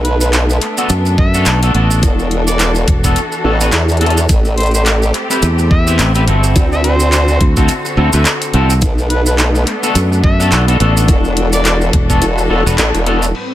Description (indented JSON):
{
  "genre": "glitch hop",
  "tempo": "106 BPM",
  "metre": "4/4",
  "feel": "swing 58% on 16ths",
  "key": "unclear",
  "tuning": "A4 = 437 Hz",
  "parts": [
    { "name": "overdriven harmonica", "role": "melody", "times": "0.0-11.8 s", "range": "B4 to E5", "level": "-23 LUFS", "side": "equal", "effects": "tape echo" },
    { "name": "clear studio string section", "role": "sustained chords", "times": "0.0-13.5 s", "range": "A2 to B4", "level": "-21 LUFS", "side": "left 1 dB", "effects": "sidechain pumping" },
    { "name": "formant-sweep wobble bass", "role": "bass", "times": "0.0-13.3 s", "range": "E1 to E2", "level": "-13 LUFS", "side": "equal", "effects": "chorus, tube saturation" },
    { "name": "dubstep drum kit", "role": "drums", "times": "0.0-13.5 s", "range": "crash cymbal, handclaps, hi-hat, rim click", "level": "-18 LUFS", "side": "equal", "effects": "overdrive, low-pass filter on hats, studio reverb, low-pass filter on cymbals, low-pass filter on snare" },
    { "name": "maracas", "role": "percussion", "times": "0.2-13.3 s", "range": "none", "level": "-23 LUFS", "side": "right 3 dB", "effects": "none" },
    { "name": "electric guitar at the edge of break-up", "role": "stabs", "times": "0.8-13.2 s", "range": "B3 to B4", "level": "-19 LUFS", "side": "left 1 dB", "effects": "analog chorus, sidechain pumping, tape echo" },
    { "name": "modern bright fingered electric bass", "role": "bass", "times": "0.9-12.8 s", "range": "E1 to F#2", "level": "-13 LUFS", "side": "equal", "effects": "none" },
    { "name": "electronic kick drum", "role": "drums", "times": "1.2-12.2 s", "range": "none", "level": "-13 LUFS", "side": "equal", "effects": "overdrive, studio reverb" },
    { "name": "airy breathy pad", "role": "texture", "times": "13.4-13.5 s", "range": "C4", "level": "-25 LUFS", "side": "left 1 dB", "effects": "chorus, sidechain pumping" }
  ],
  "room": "little or no reverb",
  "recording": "none",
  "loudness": "-10 LUFS",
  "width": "side -13 dB against mid",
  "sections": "0.0-13.4 A section",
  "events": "kick drops out 12.8-13.4; band accent 12.8",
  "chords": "0.0 Bm7; 2.0 E9sus4; 4.3 Am9; 6.6 D7; 8.8 Bm7; 11.1 E9sus4"
}